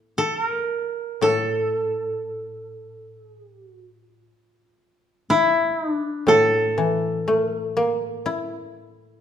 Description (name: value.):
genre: japanese traditional, Japanese chamber music.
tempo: 55-62 BPM.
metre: 4/4.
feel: rubato.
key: unclear.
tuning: A4 = 444 Hz.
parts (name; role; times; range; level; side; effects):
koto; melody; 0.0-9.2 s; E4 to Bb4; -22 LUFS; equal; none.
koto; accompaniment; 0.0-9.2 s; A2 to E4; -22 LUFS; left 1 dB; none.
room: moderate recital hall reverb, RT60 1.4 s.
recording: dark, warm production.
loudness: -20 LUFS.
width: side -9 dB against mid.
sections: 0.0-1.2 A section; 1.2-9.2 B section.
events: none.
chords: none.